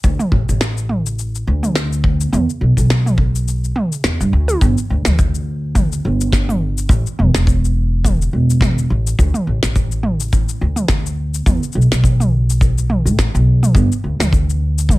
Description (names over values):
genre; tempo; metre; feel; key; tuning
folktronica; 105 BPM; 4/4; swing 56% on 16ths; G major; A4 = 441 Hz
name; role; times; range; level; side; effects
upright bass; bass; 0.0-15.0 s; E1 to A2; -16 LUFS; equal; tube saturation
kick drum; drums; 0.0-15.0 s; none; -17 LUFS; equal; none
minimal click drum kit; drums; 0.0-15.0 s; cabasa, snare drum, toms; -20 LUFS; equal; none
room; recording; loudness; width
little or no reverb; none; -14 LUFS; side -19 dB against mid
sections
0.0-4.6 A section; 4.6-15.0 B section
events
none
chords
none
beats
| 0.04 0.61 1.18 1.76 | 2.33 2.90 3.47 4.04 | 4.61 5.18 5.76 6.33 | 6.90 7.47 8.04 8.61 | 9.18 9.76 10.33 10.90 | 11.47 12.04 12.61 13.18 | 13.76 14.33 14.90